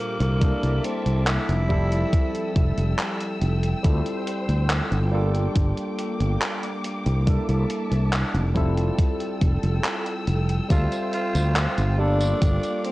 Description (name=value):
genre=vaporwave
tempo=70 BPM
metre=4/4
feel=straight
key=G dorian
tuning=A4 = 440 Hz
part: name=growling tenor saxophone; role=melody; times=0.0-2.9, 10.7-12.9 s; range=Bb3 to F4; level=-30 LUFS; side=equal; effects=tape echo
part: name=barky tine electric piano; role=accompaniment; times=0.0-12.9 s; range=Bb2 to E5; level=-28 LUFS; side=equal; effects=overdrive, wide subtle chorus
part: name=warm studio string section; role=sustained chords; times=0.0-12.9 s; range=Bb3 to E6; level=-35 LUFS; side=left 1 dB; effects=vintage 12-bit sampler grit
part: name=fretless electric bass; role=bass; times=0.2-12.6 s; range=F1 to D2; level=-22 LUFS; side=equal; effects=none
part: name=gated 80s digital drum machine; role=drums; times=0.2-12.9 s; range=handclaps, hi-hat, tambourine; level=-29 LUFS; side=equal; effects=gated reverb
part: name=electronic kick drum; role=drums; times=0.4-12.6 s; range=none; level=-21 LUFS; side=equal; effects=none
room=digital ambience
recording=dry, gritty hardware recording, cassette tape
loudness=-21 LUFS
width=side -18 dB against mid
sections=0.0-12.9 A section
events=none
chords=0.4 C13; 1.7 Fmaj9; 3.8 Dm11; 5.1 Gm7; 7.3 C13; 8.6 Fmaj9; 10.7 Dm11; 12.0 Gm7